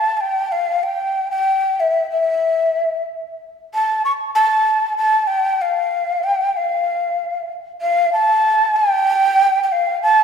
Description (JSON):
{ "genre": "andean folk", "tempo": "95 BPM", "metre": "4/4", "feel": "straight", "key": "unclear", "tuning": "A4 = 436 Hz", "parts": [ { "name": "breathy mellow large quena", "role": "solo", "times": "0.0-10.2 s", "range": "E5 to C#6", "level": "-16 LUFS", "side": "equal", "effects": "none" } ], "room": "wet concert hall reverb, RT60 2.1 s", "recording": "minimal, uncompressed stereo recording", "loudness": "-16 LUFS", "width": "side -7 dB against mid", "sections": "0.0-10.2 A section", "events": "none", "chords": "none", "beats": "0.24 | 0.87 1.50 2.13 2.77 | 3.40 4.03 4.66 5.29 | 5.92 6.55 7.18 7.82 | 8.45 9.08 9.71" }